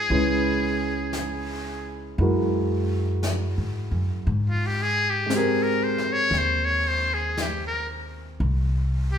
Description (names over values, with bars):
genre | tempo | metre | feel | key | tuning
jazz ballad | 58 BPM | 4/4 | swing 66% on 8ths | unclear | A4 = 440 Hz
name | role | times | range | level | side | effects
trumpet with metal mute | melody | 0.0-9.2 s | F4 to Db5 | -25 LUFS | left 2 dB | none
dark concert grand piano | accompaniment | 0.0-8.4 s | Ab3 to G5 | -26 LUFS | equal | none
upright bass | bass | 0.0-9.2 s | C2 to Ab2 | -26 LUFS | equal | none
jazz brush drum kit | drums | 0.1-9.2 s | brushed snare drum, hi-hat, snare drum | -36 LUFS | left 2 dB | none
room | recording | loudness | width
wet large studio reverb, RT60 1.3 s | band playing live in one room | -22 LUFS | side -8 dB against mid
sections
0.0-9.2 A section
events
muted trumpet solo 0.0-9.2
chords
0.1 Dbm7; 2.2 Gb9; 4.3 Abmaj9; 8.4 N.C.